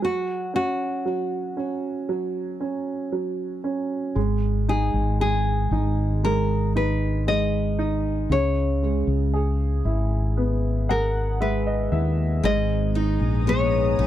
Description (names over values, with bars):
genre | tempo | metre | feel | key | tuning
pop | 58 BPM | 4/4 | straight | G# minor | A4 = 437 Hz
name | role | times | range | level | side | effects
nylon-string guitar | melody | 0.0-14.1 s | F#4 to D#5 | -26 LUFS | left 3 dB | none
clear upright piano | accompaniment | 0.0-14.1 s | C#3 to F#5 | -26 LUFS | right 4 dB | none
mellow fretless electric bass | bass | 4.2-14.1 s | G#1 to D#2 | -23 LUFS | left 1 dB | analog chorus
shimmering ambient pad | sustained chords | 12.9-14.1 s | B3 to D#6 | -32 LUFS | left 4 dB | chorus, built-in reverb, phaser
picked steel-string acoustic guitar | arpeggios | 12.4-14.1 s | G#2 to D#4 | -29 LUFS | left 6 dB | none
room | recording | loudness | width
little or no reverb | dry, close 1970s-style studio recording | -21 LUFS | side -12 dB against mid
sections
0.0-12.4 A section; 12.4-14.1 B section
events
upright piano fill 10.4-12.4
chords
0.0 F#5; 4.2 G#5; 8.3 C#m7; 12.4 G#madd9